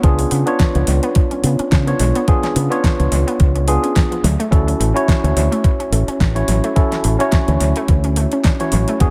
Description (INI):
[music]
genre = nu-disco, nu disco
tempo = 107 BPM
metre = 4/4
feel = swing 56% on 16ths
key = unclear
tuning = A4 = 440 Hz
[part]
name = tine electric piano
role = accompaniment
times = 0.0-9.1 s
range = B3 to C#5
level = -22 LUFS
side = equal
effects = tape echo
[part]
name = unison pluck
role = arpeggios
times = 0.0-9.1 s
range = E3 to D4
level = -27 LUFS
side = equal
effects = sidechain pumping, dub echo
[part]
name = fingered electric bass with an envelope filter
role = bass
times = 0.0-9.1 s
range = A1 to C#3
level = -19 LUFS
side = equal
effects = none
[part]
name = electronic kick drum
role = drums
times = 0.0-9.1 s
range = none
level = -17 LUFS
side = equal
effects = small room ambience
[part]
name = pop drum kit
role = drums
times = 0.0-9.1 s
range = hi-hat, snare drum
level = -26 LUFS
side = equal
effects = small room ambience, tape echo
[sound]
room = light reverb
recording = echo-heavy mix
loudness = -16 LUFS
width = mono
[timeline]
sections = 0.0-9.1 A section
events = none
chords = 0.0 C#7b9; 4.2 Dmaj9